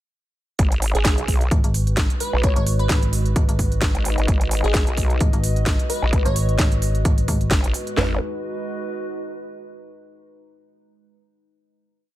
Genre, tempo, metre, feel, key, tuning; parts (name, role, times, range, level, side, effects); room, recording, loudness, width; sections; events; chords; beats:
bass house; 130 BPM; 4/4; swing 55% on 16ths; G# minor; A4 = 441 Hz
dark analog pad; sustained chords; 2.2-8.2 s; G#3 to B4; -34 LUFS; right 1 dB; chorus, phaser, sidechain pumping
vowel-sweep wobble bass; bass; 0.6-8.2 s; G#1 to B1; -22 LUFS; equal; chorus, overdrive, sidechain pumping
garage drum kit; drums; 0.6-8.0 s; hi-hat, snare drum; -27 LUFS; equal
house drum kit; drums; 0.6-8.1 s; handclaps, kick drum, snare drum, toms; -20 LUFS; equal; overdrive
warbly tape-like pad; texture; 1.7-9.8 s; F#4 to D#5; -32 LUFS; equal; chorus, built-in reverb, sidechain pumping
glassy wavetable pluck; melody; 1.0-6.9 s; G#4 to C#5; -30 LUFS; equal; chorus, tape echo
metallic FM bass; bass; 1.5-7.5 s; G#1; -21 LUFS; equal; overdrive, sidechain pumping
digital ambience; -18 LUFS; side -14 dB against mid
0.6-8.0 drop; 8.0-9.8 final chord
drop 0.6-8.0
0.6 G#m
| 0.59 1.05 1.51 1.97 | 2.44 2.90 3.36 3.82 | 4.28 4.74 5.21 5.67 | 6.13 6.59 7.05 7.51 | 7.97 8.44 8.90 9.36